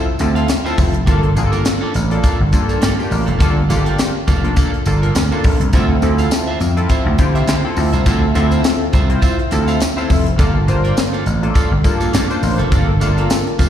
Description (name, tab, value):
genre	early-eighties boogie funk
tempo	103 BPM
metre	4/4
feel	swing 56% on 16ths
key	unclear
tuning	A4 = 440 Hz
part	chorused polysynth	accompaniment	0.0-13.5 s	A3 to C5	-20 LUFS	left 3 dB	slapback echo
part	electric guitar at the edge of break-up	riff	0.0-13.7 s	Bb3 to F5	-25 LUFS	right 5 dB	wide subtle chorus, slapback echo
part	vintage slap bass	bass	0.2-13.7 s	F1 to D3	-16 LUFS	equal	none
part	tight funk drum kit	drums	0.2-13.7 s	hi-hat, kick drum, snare drum	-17 LUFS	equal	none
part	tambourine	percussion	0.2-13.7 s	none	-32 LUFS	left 4 dB	none
room	little or no reverb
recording	live gig heard through the venue's PA, recital hall reverb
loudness	-13 LUFS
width	side -10 dB against mid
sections	0.0-13.7 A section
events	none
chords	0.0 Dm9; 1.1 Gm9; 5.7 Dm9; 10.4 Gm9